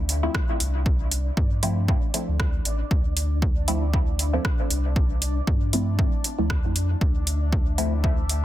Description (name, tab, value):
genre	dub techno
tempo	117 BPM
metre	4/4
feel	swing 55% on 16ths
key	D minor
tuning	A4 = 440 Hz
part	warm sub bass	bass	0.0-8.4 s	A1 to G2	-25 LUFS	equal	sidechain pumping
part	bubbling stepped-filter texture	texture	0.0-8.4 s	D4 to E5	-36 LUFS	left 4 dB	chorus, built-in reverb, sidechain pumping
part	deep house drum kit	drums	0.1-8.4 s	hi-hat, rim click	-28 LUFS	right 1 dB	soft clipping on snare
part	filtered dub chord stab	stabs	0.2-7.9 s	F3 to E4	-29 LUFS	equal	chorus, phaser, sidechain pumping, dub echo
part	electronic kick drum	drums	0.3-8.2 s	none	-24 LUFS	equal	none
room	digital ambience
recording	dense, heavily limited modern master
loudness	-21 LUFS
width	side -14 dB against mid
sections	0.0-8.4 A section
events	none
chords	0.0 Dm7